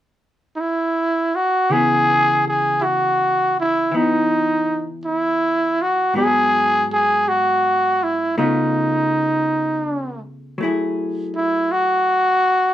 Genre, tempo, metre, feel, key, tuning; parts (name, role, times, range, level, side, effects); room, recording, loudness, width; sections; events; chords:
jazz ballad; 54 BPM; 4/4; swing 69% on 8ths; C# minor; A4 = 440 Hz
growling trumpet; melody; 0.6-12.7 s; D#4 to G#4; -16 LUFS; equal
vintage hollow-body jazz guitar; accompaniment; 1.7-12.7 s; G#2 to G#4; -24 LUFS; left 2 dB
moderate studio reverb, RT60 0.5 s; band playing live in one room; -16 LUFS; side -12 dB against mid
0.0-1.7 A section; 1.7-12.7 B section
0.0 N.C.; 1.7 C#m7; 6.1 G#m7b5; 8.4 C#7b13; 10.6 F#m9